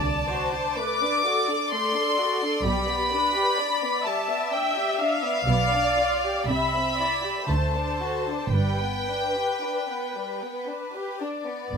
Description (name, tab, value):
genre	classical, slow romantic movement for string orchestra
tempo	55-65 BPM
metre	3/4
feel	rubato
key	G major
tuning	A4 = 440 Hz
part	warm symphonic violin section	melody	0.0-11.8 s	D5 to D6	-26 LUFS	left 2 dB	none
part	warm symphonic violin section	second line	0.0-11.7 s	G3 to E5	-29 LUFS	left 2 dB	none
part	dark symphonic viola section	accompaniment	0.0-11.8 s	B3 to E5	-29 LUFS	right 1 dB	none
part	dark chamber double bass section	bass	0.0-11.8 s	G1 to D2	-29 LUFS	right 2 dB	none
part	warm symphonic cello section	bass	0.0-11.8 s	G2 to D3	-31 LUFS	right 2 dB	none
room	little or no reverb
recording	close, detailed microphones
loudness	-22 LUFS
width	side -6 dB against mid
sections	0.0-11.7 A section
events	none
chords	0.0 D; 2.7 G/B; 5.5 G7/B; 6.5 C; 7.5 D; 8.5 G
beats	0.79 1.73 | 2.66 3.59 4.53 | 5.47 6.49 7.49 | 8.54 9.62 10.67 | 11.71